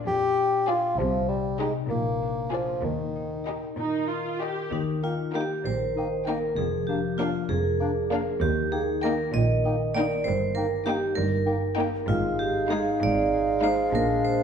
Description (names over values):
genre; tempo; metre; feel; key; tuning
cinematic, playful, whimsical film cue; 65 BPM (dotted quarters); 6/8; straight; Eb major; A4 = 439 Hz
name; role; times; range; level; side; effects
concert harp; arpeggios; 0.0-14.4 s; G2 to Eb5; -32 LUFS; left 8 dB; none
mellow bassoon; accompaniment; 0.1-14.4 s; Eb3 to G4; -29 LUFS; equal; none
clear symphonic cello section; bass; 0.1-14.4 s; Eb2 to C3; -33 LUFS; right 2 dB; none
rich studio violin section; melody; 0.7-13.9 s; D5 to G5; -38 LUFS; left 6 dB; none
warm studio violin section; second line; 0.7-13.9 s; D4 to Ab4; -35 LUFS; left 3 dB; none
warm studio viola section; accompaniment; 0.7-13.9 s; Ab3 to G4; -34 LUFS; right 2 dB; none
rich studio double bass section; bass; 1.0-14.4 s; F1 to Eb2; -32 LUFS; right 2 dB; none
vibraphone with medium hard mallets; melody; 4.7-14.4 s; Eb4 to Eb5; -28 LUFS; right 4 dB; none
dark clarinet; second line; 5.0-14.4 s; D4 to Eb4; -34 LUFS; left 1 dB; none
mellow hollow concert flute; second line; 5.0-14.4 s; F5 to G5; -32 LUFS; equal; none
room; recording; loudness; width
wet scoring stage reverb, RT60 1.5 s; minimal, uncompressed stereo recording; -23 LUFS; side -7 dB against mid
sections
0.0-4.7 A section; 4.7-14.4 A section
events
none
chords
0.0 Bb7; 1.0 Cm; 1.9 Bb7; 2.8 Eb; 6.6 Bb7/F; 8.4 Eb; 10.3 Eb/G; 12.1 Fm7/Ab